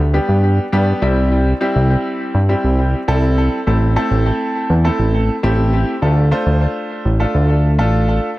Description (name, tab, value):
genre	dance-pop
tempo	102 BPM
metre	4/4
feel	straight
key	unclear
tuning	A4 = 439 Hz
part	fat analog bass	bass	0.0-8.2 s	A1 to G2	-14 LUFS	equal	none
part	clear grand piano	accompaniment	0.1-8.3 s	G3 to C5	-18 LUFS	equal	tape echo
room	light reverb, small room ambience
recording	echo-heavy mix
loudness	-13 LUFS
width	side -18 dB against mid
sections	0.0-8.4 A section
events	none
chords	0.0 G; 1.0 C; 3.7 Am; 6.0 Dm